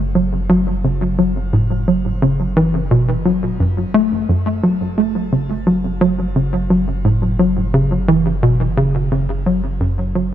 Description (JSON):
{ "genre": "ambient, sequencer-driven space music", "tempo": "87 BPM", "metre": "4/4", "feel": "straight", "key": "F# minor", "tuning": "A4 = 440 Hz", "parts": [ { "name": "tight sequencer bass", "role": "riff", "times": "0.0-10.3 s", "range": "F#2 to A3", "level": "-15 LUFS", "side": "equal", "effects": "wide subtle chorus, tape echo, shimmer reverb" }, { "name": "warm sub bass", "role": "bass", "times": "0.0-10.3 s", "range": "F#1", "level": "-23 LUFS", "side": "equal", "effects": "none" } ], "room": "light reverb", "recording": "nothing above 10.7 kHz", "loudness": "-14 LUFS", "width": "side -11 dB against mid", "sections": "0.0-10.3 A section", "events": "fade-out 8.0-10.3", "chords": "0.0 F#m" }